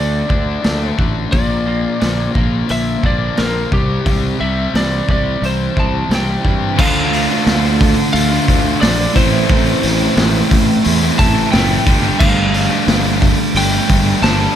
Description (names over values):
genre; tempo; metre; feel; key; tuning
quiet-loud alternative rock; 88 BPM; 4/4; straight; D minor; A4 = 440 Hz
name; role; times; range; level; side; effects
lightly driven lead guitar; melody; 0.0-14.6 s; G4 to A5; -22 LUFS; equal; none
twelve-string electric guitar; arpeggios; 0.0-6.8 s; Bb2 to D4; -24 LUFS; right 5 dB; lush chorus
fuzz guitar; riff; 0.0-14.6 s; A2 to G4; -20 LUFS; left 10 dB; distortion
fuzz fingered electric bass; bass; 0.0-14.5 s; F#1 to G2; -19 LUFS; equal; overdrive
raw garage drum kit; drums; 0.3-14.4 s; crash cymbal, hi-hat, kick drum, snare drum; -17 LUFS; equal; none
crunchy overdriven guitar; riff; 6.8-14.6 s; G2 to D4; -21 LUFS; right 1 dB; none
thick fuzz guitar; riff; 6.8-14.6 s; A2 to G4; -19 LUFS; right 14 dB; distortion
room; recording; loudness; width
light reverb, small room ambience; none; -12 LUFS; side -10 dB against mid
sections
0.0-6.8 A section; 6.8-14.6 B section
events
none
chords
0.0 D5; 1.3 Bb; 3.7 C; 6.8 Dm; 9.2 Am; 11.9 Gsus2